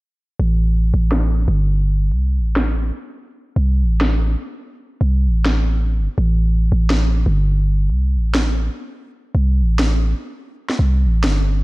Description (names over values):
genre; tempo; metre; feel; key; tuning
half-time drum and bass; 166 BPM; 4/4; half-time; unclear; A4 = 440 Hz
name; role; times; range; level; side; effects
growling 808-style bass; bass; 0.4-11.6 s; G1 to C2; -16 LUFS; equal; tube saturation
electronic snare drum; drums; 1.1-11.3 s; none; -23 LUFS; equal; low-pass filter on snare, studio reverb
room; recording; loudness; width
little or no reverb; none; -16 LUFS; side -21 dB against mid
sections
0.4-11.6 A section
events
filter sweep on drum 0.4-11.6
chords
none